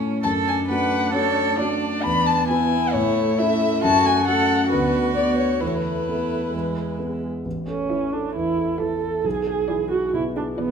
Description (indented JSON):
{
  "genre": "quick classical-period movement for piano quartet",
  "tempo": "134 BPM",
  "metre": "4/4",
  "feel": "straight",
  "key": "A major",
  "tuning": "A4 = 442 Hz",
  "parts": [
    { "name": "clear cello", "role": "second line", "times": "0.0-10.7 s", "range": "E3 to B4", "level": "-26 LUFS", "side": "right 7 dB", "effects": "none" },
    { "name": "dark viola", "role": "accompaniment", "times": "0.0-10.7 s", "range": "G#3 to A4", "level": "-26 LUFS", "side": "right 4 dB", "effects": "none" },
    { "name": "warm concert grand piano", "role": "accompaniment", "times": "0.0-10.7 s", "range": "A1 to B4", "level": "-25 LUFS", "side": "left 1 dB", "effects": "none" },
    { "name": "dark violin", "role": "melody", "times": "0.2-10.7 s", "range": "B4 to B5", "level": "-22 LUFS", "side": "left 6 dB", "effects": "none" }
  ],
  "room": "wet recital hall reverb, RT60 1.6 s",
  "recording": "minimal, uncompressed stereo recording",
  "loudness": "-19 LUFS",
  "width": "side -6 dB against mid",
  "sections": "0.0-7.5 A section; 7.5-10.7 B section",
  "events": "none",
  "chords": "0.2 D/F#; 2.1 E; 2.9 A; 3.8 F#m; 4.7 Bm/D; 5.6 Esus4; 6.5 E; 7.5 A; 9.2 E7/B",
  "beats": "| 0.25 0.70 1.15 1.60 | 2.05 2.50 2.95 3.39 | 3.83 4.28 4.72 5.16 | 5.62 6.08 6.53 6.99 | 7.45 7.90 8.35 8.80 | 9.25 9.70 10.14 10.59"
}